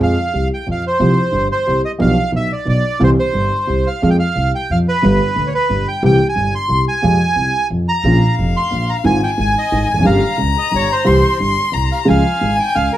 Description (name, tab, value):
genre	tango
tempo	179 BPM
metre	3/4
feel	rubato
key	F minor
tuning	A4 = 440 Hz
part	bandoneon	melody	0.0-13.0 s	Bb4 to C6	-18 LUFS	right 2 dB	none
part	dark concert grand piano	accompaniment	0.0-12.9 s	F1 to Ab4	-16 LUFS	equal	none
part	upright bass	bass	0.0-12.9 s	E1 to F2	-21 LUFS	equal	none
part	warm violin	second line	8.0-13.0 s	F5 to C6	-19 LUFS	left 4 dB	tape echo
room	moderate club reverb, RT60 0.6 s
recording	vinyl crackle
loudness	-13 LUFS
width	side -13 dB against mid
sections	0.0-13.0 A section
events	none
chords	0.0 Fm; 1.0 Csus4; 2.0 G7/B; 3.0 C; 4.0 Fm; 5.0 G; 6.0 C; 7.0 Fm; 8.0 Bbm; 9.1 Fm7/Ab; 10.1 Gdim; 11.1 C; 12.1 Db